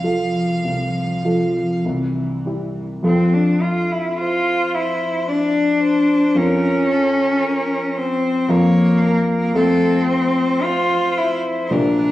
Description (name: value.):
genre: classical, slow romantic movement for piano trio.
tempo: 49-58 BPM.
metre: 3/4.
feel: rubato.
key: F major.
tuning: A4 = 440 Hz.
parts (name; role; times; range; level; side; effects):
clear violin; melody; 0.0-12.1 s; A4 to F5; -25 LUFS; left 1 dB; none.
clear cello; second line; 0.0-12.1 s; E3 to F4; -18 LUFS; equal; none.
dark baby grand piano; accompaniment; 0.0-12.1 s; Bb1 to Bb4; -20 LUFS; equal; none.
room: wet recital hall reverb, RT60 1.6 s.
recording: worn, warbling old tape, cassette tape, warbly pitch drift, small room ambience.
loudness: -16 LUFS.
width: side -15 dB against mid.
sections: 0.0-3.0 A section; 3.0-12.1 B section.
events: none.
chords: 0.0 F/C; 1.8 C; 3.0 F; 6.4 Bbm/F; 9.6 F.